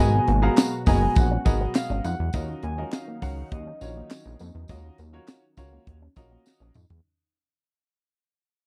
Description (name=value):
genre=early-eighties boogie funk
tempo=102 BPM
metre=4/4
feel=straight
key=Eb minor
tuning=A4 = 440 Hz
part: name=Celtic harp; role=melody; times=0.0-6.4 s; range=Eb5 to Bb5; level=-33 LUFS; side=equal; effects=slapback echo
part: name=bright grand piano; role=accompaniment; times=0.0-6.7 s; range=Cb4 to Gb5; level=-33 LUFS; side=equal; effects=none
part: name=warm analog pad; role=sustained chords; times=0.0-7.0 s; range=Cb3 to Gb4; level=-37 LUFS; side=equal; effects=chorus
part: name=electric guitar with an envelope filter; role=riff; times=0.0-6.9 s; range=Ab3 to Eb4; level=-37 LUFS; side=equal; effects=analog chorus
part: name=chorused synth bass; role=bass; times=0.0-7.0 s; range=Gb1 to F2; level=-28 LUFS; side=equal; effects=none
part: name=tight funk drum kit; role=drums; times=0.3-7.0 s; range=handclaps, hi-hat, kick drum, snare drum, toms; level=-24 LUFS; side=equal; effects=none
part: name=tambourine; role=percussion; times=0.6-6.9 s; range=none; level=-44 LUFS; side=equal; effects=none
room=little or no reverb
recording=dry, close 1970s-style studio recording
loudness=-24 LUFS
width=mono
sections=0.0-7.0 A section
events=fade-out 0.0-7.0; drum fill 6.5-7.0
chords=0.0 Abm9; 2.3 Ebm9